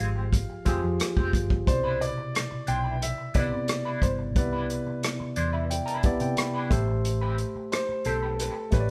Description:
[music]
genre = lush 1970s-style soul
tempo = 89 BPM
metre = 4/4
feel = straight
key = C major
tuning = A4 = 440 Hz
[part]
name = warm grand piano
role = melody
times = 0.0-8.9 s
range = A4 to G5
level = -34 LUFS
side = equal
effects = none
[part]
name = barky tine electric piano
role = accompaniment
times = 0.0-8.9 s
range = B2 to C6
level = -33 LUFS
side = equal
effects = overdrive
[part]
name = electric guitar at the edge of break-up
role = riff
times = 0.0-8.8 s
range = Ab3 to C5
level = -38 LUFS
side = equal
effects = wah, tremolo
[part]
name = hollow-body short-scale fingered electric bass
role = bass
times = 0.0-8.9 s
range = F1 to C3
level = -33 LUFS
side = equal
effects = none
[part]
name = warm soul drum kit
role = drums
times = 0.3-8.9 s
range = hi-hat, kick drum, rim click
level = -29 LUFS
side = equal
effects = none
[sound]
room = moderate large studio reverb, RT60 1.1 s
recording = band playing live in one room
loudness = -27 LUFS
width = mono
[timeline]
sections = 0.0-8.9 A section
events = tine electric piano fill 5.0-7.0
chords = 0.0 Fmadd9; 1.7 Cmaj9; 6.7 Am9

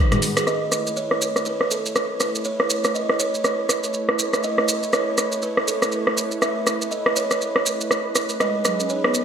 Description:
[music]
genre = afro house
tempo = 121 BPM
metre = 4/4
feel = swing 59% on 16ths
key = unclear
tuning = A4 = 438 Hz
[part]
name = warm analog pad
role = sustained chords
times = 0.0-9.2 s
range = G#3 to C#5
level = -29 LUFS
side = right 2 dB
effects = chorus
[part]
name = marimba with soft mallets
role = arpeggios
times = 0.0-0.4, 8.4-9.2 s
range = F#3 to G#4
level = -28 LUFS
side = right 1 dB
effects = none
[part]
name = afro-pop drum kit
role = drums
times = 0.1-9.1 s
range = hi-hat, rim click, toms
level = -22 LUFS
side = right 1 dB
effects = overdrive, low-pass filter on snare, low-pass filter on hats, low-pass filter on toms, low-pass filter on room, gated reverb
[part]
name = maracas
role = percussion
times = 0.2-9.2 s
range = none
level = -26 LUFS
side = right 3 dB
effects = none
[part]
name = buzzing kalimba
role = melody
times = 0.5-9.2 s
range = A4 to E5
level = -27 LUFS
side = equal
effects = digital delay
[sound]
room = moderate plate reverb, RT60 1.5 s, studio reverb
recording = bright 1980s-style digital production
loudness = -19 LUFS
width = side -7 dB against mid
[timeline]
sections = 0.5-9.2 A section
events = drum fill 0.0-0.5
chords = 0.5 A; 8.4 G#m7

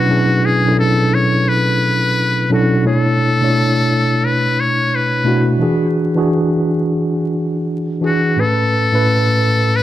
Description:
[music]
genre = hip hop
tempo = 87 BPM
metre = 4/4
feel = swing 65% on 16ths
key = B dorian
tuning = A4 = 439 Hz
[part]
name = trumpet with metal mute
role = melody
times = 0.0-9.8 s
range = F#4 to C#5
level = -18 LUFS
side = left 3 dB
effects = low-pass filter, plate reverb
[part]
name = mellow tine electric piano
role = accompaniment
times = 0.0-9.8 s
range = A2 to C#5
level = -14 LUFS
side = equal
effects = medium stereo tremolo, cassette tape, low-pass filter, plate reverb
[sound]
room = moderate studio reverb, RT60 0.6 s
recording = vinyl crackle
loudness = -13 LUFS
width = side -13 dB against mid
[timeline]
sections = 0.0-2.9 A section; 2.9-9.8 B section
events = none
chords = 0.0 Bm11; 5.6 E9; 8.4 Aadd9

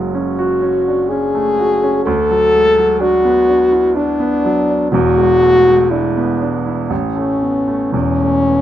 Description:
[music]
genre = classical, romantic duo for French horn and grand piano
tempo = 62 BPM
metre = 3/4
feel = rubato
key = unclear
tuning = A4 = 440 Hz
[part]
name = warm grand piano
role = accompaniment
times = 0.0-8.6 s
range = E1 to F#4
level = -17 LUFS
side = right 2 dB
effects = none
[part]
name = mellow French horn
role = melody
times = 0.1-8.6 s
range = C#4 to A4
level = -13 LUFS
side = left 1 dB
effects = none
[sound]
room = moderate studio reverb, RT60 0.8 s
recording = none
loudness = -12 LUFS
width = side -12 dB against mid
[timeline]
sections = 0.0-8.6 A section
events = none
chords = 0.0 F#m; 2.1 Bm7/D; 4.9 E7; 6.9 A; 7.9 Esus4

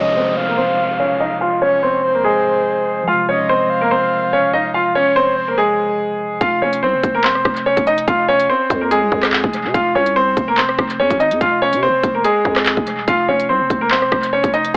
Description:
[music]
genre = hip hop, drill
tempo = 144 BPM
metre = 4/4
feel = half-time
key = F minor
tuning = A4 = 440 Hz
[part]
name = bright concert grand piano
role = melody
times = 0.0-14.8 s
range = Ab3 to F5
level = -18 LUFS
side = equal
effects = low-pass filter, analog delay
[part]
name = breathy flute-like synth lead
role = second line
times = 0.0-5.6 s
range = C5 to F5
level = -22 LUFS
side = equal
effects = chorus, analog delay
[part]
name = mellow tine electric piano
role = accompaniment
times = 0.0-6.4 s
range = C3 to Ab3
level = -32 LUFS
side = equal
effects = low-pass filter
[part]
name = downlifter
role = sound effects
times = 0.0-3.1 s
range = none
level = -30 LUFS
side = equal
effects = none
[part]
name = growling 808-style bass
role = bass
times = 6.4-14.8 s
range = Eb1 to C3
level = -26 LUFS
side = equal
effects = none
[part]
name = drill drum kit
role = drums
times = 6.4-14.8 s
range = handclaps, hi-hat, kick drum, rim click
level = -22 LUFS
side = equal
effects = analog delay
[sound]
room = light reverb, digital ambience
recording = echo-heavy mix, AM radio sound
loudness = -16 LUFS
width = mono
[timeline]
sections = 0.0-6.4 A section; 6.4-14.8 B section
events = filter sweep 0.0-6.4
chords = 0.0 Fm

